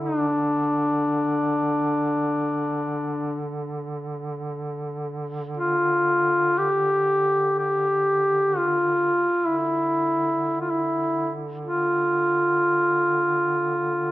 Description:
caucasian folk, Caucasian lament; free time; D minor; A4 = 440 Hz
warm duduk; melody; 0.0-14.1 s; D4 to G4; -21 LUFS; equal; slapback echo
mellow duduk; drone; 0.0-14.1 s; D3; -31 LUFS; right 1 dB
light reverb; close, detailed microphones; -21 LUFS; side -16 dB against mid
0.0-14.1 A section
free time

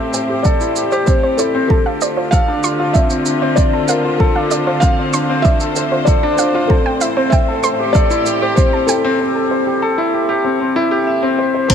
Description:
piano and strings electronica; 96 BPM; 4/4; straight; A4 = 444 Hz
felt-muted upright piano; melody; 0.0-11.7 s; A4 to F5; -19 LUFS; left 2 dB; low-pass filter, ping-pong delay
clear studio string section; sustained chords; 0.0-11.7 s; A2 to C5; -24 LUFS; left 1 dB; sidechain pumping, low-pass filter
warm concert grand piano; riff; 0.0-11.7 s; C4 to E5; -17 LUFS; left 1 dB; ping-pong delay
round analog bass; bass; 0.0-11.7 s; A1 to D2; -37 LUFS; right 1 dB
soft round pluck; arpeggios; 0.1-11.7 s; C5 to C6; -24 LUFS; right 4 dB; chorus, sidechain pumping, ping-pong delay
electronic shaker and crash cymbal; drums; 0.1-11.7 s; -23 LUFS; right 4 dB
electronic kick drum; drums; 0.5-11.7 s; -14 LUFS; right 1 dB
moderate huge ambient reverb, RT60 6.4 s; -13 LUFS; side -8 dB against mid
0.0-11.7 A section
build-up 0.0-11.7; filter sweep on string section 0.0-11.7; filter sweep on felt piano 0.0-11.7
0.0 Am7; 1.7 Dm7; 6.7 Am7
0.45 1.08 | 1.70 2.33 2.95 3.58 | 4.20 4.83 5.45 6.08 | 6.70 7.33 7.95 8.58 | 9.20 9.83 10.45 11.08 | 11.70

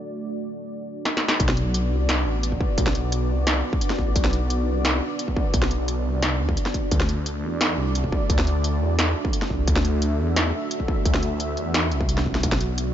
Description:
half-time drum and bass; 174 BPM; 4/4; half-time; B phrygian; A4 = 439 Hz
dark analog pad; sustained chords; 0.0-12.9 s; A3 to E5; -29 LUFS; right 1 dB; chorus, sidechain pumping
industrial drum kit; drums; 1.1-12.8 s; hi-hat, snare drum; -26 LUFS; equal
phased detuned saw bass; bass; 1.4-12.9 s; A1 to E2; -24 LUFS; equal; phaser
electronic kick drum; drums; 1.4-12.5 s; -24 LUFS; equal; distortion
digital ambience; nothing above 7.7 kHz; -20 LUFS; side -10 dB against mid
0.0-1.4 A section; 1.4-12.9 B section
break 0.0-1.4; drum fill 1.1-1.4; drop 1.4-12.9
0.0 D; 1.4 Bm; 6.9 D; 12.4 Bm
| 0.02 0.36 0.71 1.05 | 1.40 1.74 2.09 2.43 | 2.78 3.12 3.47 3.81 | 4.16 4.50 4.85 5.19 | 5.54 5.88 6.23 6.57 | 6.92 7.26 7.61 7.95 | 8.30 8.64 8.98 9.33 | 9.68 10.02 10.37 10.71 | 11.05 11.40 11.74 12.09 | 12.43 12.78

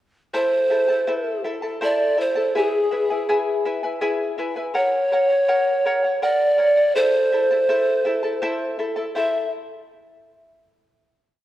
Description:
andean folk, Andean ensemble; 82 BPM; 3/4; straight; A harmonic minor; A4 = 440 Hz
breathy polished pan flute; melody; 0.3-9.5 s; G#4 to E5; -19 LUFS; equal
charango; accompaniment; 0.3-9.5 s; E4 to A5; -24 LUFS; left 1 dB
moderate concert hall reverb, RT60 2.0 s; worn, warbling old tape, cassette tape, warbly pitch drift; -18 LUFS; side -14 dB against mid
0.3-9.2 A section; 9.2-11.4 final chord
0.3 Am; 2.6 E; 4.8 F#; 7.0 Am
| 0.35 1.08 1.82 | 2.55 3.29 4.02 | 4.76 5.49 6.22 | 6.96 7.69 8.43 | 9.16

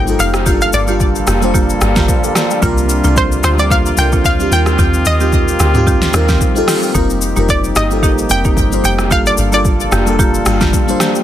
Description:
amapiano; 111 BPM; 4/4; swing 55% on 16ths; G minor; A4 = 440 Hz
analog pluck; melody; 0.0-11.0 s; C5 to G5; -17 LUFS; equal; chorus, digital delay
crystalline FM electric piano; accompaniment; 0.0-11.2 s; G3 to G5; -19 LUFS; left 1 dB; chorus, phaser
mellow brass ensemble; sustained chords; 0.0-11.2 s; C3 to A4; -21 LUFS; left 1 dB; sidechain pumping
deep log drum bass; bass; 0.0-10.7 s; F1 to Eb2; -16 LUFS; equal
smooth R&B drum kit; drums; 0.1-11.2 s; hi-hat, kick drum, rim click, shaker, snare drum, toms; -16 LUFS; equal
marimba with medium mallets; stabs; 0.2-11.2 s; Bb3 to G4; -20 LUFS; right 4 dB; digital delay
digital ambience; dense, heavily limited modern master; -10 LUFS; side -11 dB against mid
0.0-11.2 A section
0.5 Gm7; 2.6 C9sus4; 4.5 Eb69; 6.9 F9sus4; 9.1 Gm7
| 0.46 1.00 1.54 2.08 | 2.62 3.17 3.71 4.25 | 4.79 5.33 5.87 6.41 | 6.95 7.49 8.03 8.57 | 9.11 9.65 10.19 10.73

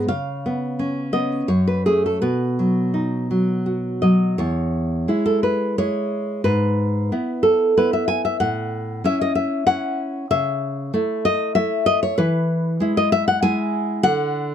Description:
romantic piece for solo classical guitar; 78-99 BPM; 3/4; rubato; E major; A4 = 440 Hz
nylon-string guitar; solo; 0.0-14.5 s; E2 to G#5; -18 LUFS; equal
light reverb; close, detailed microphones; -18 LUFS; side -9 dB against mid
0.0-4.4 A section; 4.4-14.5 B section
0.1 C#7; 1.5 F#m; 2.2 B; 4.4 E; 6.4 E/G#; 8.4 A; 10.3 A/C#; 12.2 E; 14.0 N.C.
| 0.09 0.78 1.46 | 2.20 2.92 3.65 | 4.39 5.09 5.76 | 6.44 7.11 7.76 | 8.41 9.04 9.66 | 10.28 10.92 11.55 | 12.17 12.80 13.41 | 14.04

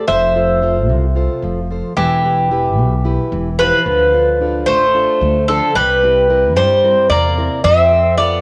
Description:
greek folk, Greek bouzouki band; 222 BPM (eighths); 7/8; straight; E phrygian; A4 = 440 Hz
Greek bouzouki; melody; 0.0-8.4 s; G4 to E5; -16 LUFS; equal; cassette tape
Greek bouzouki; second line; 0.0-8.4 s; E3 to C5; -25 LUFS; equal; cassette tape
fingerpicked plugged-in steel-string acoustic guitar; accompaniment; 0.0-8.4 s; B2 to C5; -25 LUFS; equal; cassette tape
upright bass; bass; 0.1-8.4 s; E1 to G2; -21 LUFS; equal
moderate spring reverb, RT60 1.9 s, studio ambience; home recording on cassette; -14 LUFS; mono
0.0-2.0 A section; 2.0-8.4 A section
0.1 F; 2.0 Em; 3.9 Dm; 5.7 C7; 7.6 F
| 0.08 0.35 0.62 0.89 1.16 1.43 1.70 | 1.97 2.24 2.51 2.78 3.05 3.32 3.59 | 3.86 4.13 4.40 4.67 4.94 5.21 5.48 | 5.75 6.02 6.29 6.56 6.83 7.10 7.37 | 7.64 7.91 8.18

